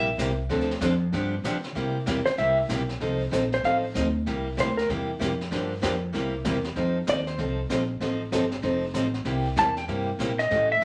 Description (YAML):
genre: country, western swing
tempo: 192 BPM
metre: 4/4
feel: swing 63% on 8ths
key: C mixolydian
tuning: A4 = 441 Hz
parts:
  - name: picked steel-string acoustic guitar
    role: accompaniment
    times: 0.0-10.8 s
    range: C3 to A4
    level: -30 LUFS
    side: equal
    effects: none
  - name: upright bass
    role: bass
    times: 0.0-10.8 s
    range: F1 to D3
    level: -33 LUFS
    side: equal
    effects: none
  - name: jazz brush drum kit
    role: drums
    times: 0.2-10.8 s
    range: brushed snare drum, hi-hat, snare drum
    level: -37 LUFS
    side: equal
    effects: none
  - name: clean lap steel guitar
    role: melody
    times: 2.3-4.9, 7.1-7.4, 9.6-10.8 s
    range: Bb4 to A5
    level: -25 LUFS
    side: equal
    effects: none
room: wet studio ambience, RT60 0.5 s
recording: none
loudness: -26 LUFS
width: mono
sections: 0.0-1.8 A section; 1.8-10.8 A section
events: electric slide guitar solo 1.8-10.8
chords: 0.5 Dm7; 1.1 G7; 1.8 C7; 3.0 F7; 4.3 C7; 5.5 Gm7; 6.1 C7; 6.8 F7; 9.3 C7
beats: 0.18 | 0.50 0.81 1.13 1.44 | 1.75 2.07 2.38 2.69 | 3.01 3.32 3.63 3.95 | 4.26 4.58 4.89 5.20 | 5.51 5.83 6.14 6.45 | 6.76 7.08 7.39 7.70 | 8.01 8.32 8.64 8.95 | 9.26 9.57 9.88 10.20 | 10.51 10.82